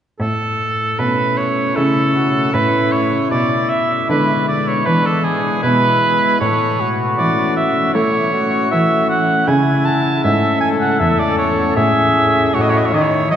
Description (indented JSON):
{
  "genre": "classical, baroque-style sonata movement with continuo",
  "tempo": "78 BPM",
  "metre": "4/4",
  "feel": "straight",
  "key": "A major",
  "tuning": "A4 = 440 Hz",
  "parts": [
    { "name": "bright oboe", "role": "second line", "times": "0.2-13.4 s", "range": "G#4 to A5", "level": "-17 LUFS", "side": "right 2 dB", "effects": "none" },
    { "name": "pipe organ, flutes", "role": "accompaniment", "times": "0.2-13.4 s", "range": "E2 to F#4", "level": "-20 LUFS", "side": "left 2 dB", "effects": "none" },
    { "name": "warm cello", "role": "bass", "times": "0.2-13.4 s", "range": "E2 to A3", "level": "-20 LUFS", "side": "equal", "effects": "none" },
    { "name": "warm trumpet", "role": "melody", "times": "1.7-13.4 s", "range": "D4 to A4", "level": "-22 LUFS", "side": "left 4 dB", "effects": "none" }
  ],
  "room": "wet cathedral reverb, RT60 6.0 s",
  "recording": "recorded in a church or concert hall, nothing above 11.0 kHz",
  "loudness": "-13 LUFS",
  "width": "side -9 dB against mid",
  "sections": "0.2-13.4 A section",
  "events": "none",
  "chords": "0.2 A; 3.3 E7/B; 6.4 A; 12.5 F#m7/A",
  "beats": "| 0.20 0.99 1.77 2.54 | 3.32 4.09 4.87 5.64 | 6.42 7.19 7.95 8.72 | 9.48 10.24 11.00 11.77 | 12.54 13.31"
}